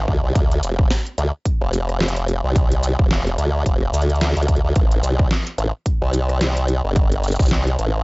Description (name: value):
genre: glitch hop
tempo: 109 BPM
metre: 4/4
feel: swing 58% on 16ths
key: unclear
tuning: A4 = 435 Hz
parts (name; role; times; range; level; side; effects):
- formant-sweep wobble bass; bass; 0.0-8.0 s; F1 to D2; -19 LUFS; equal; chorus
- electronic kick drum; drums; 0.1-7.5 s; none; -18 LUFS; equal; small room ambience
- dubstep drum kit; drums; 0.4-7.9 s; hi-hat, rim click, shaker, snare drum; -24 LUFS; equal; small room ambience
room: little or no reverb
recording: dry, gritty hardware recording, cassette tape, nothing above 7.8 kHz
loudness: -17 LUFS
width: side -33 dB against mid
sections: 0.0-8.0 A section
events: none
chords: none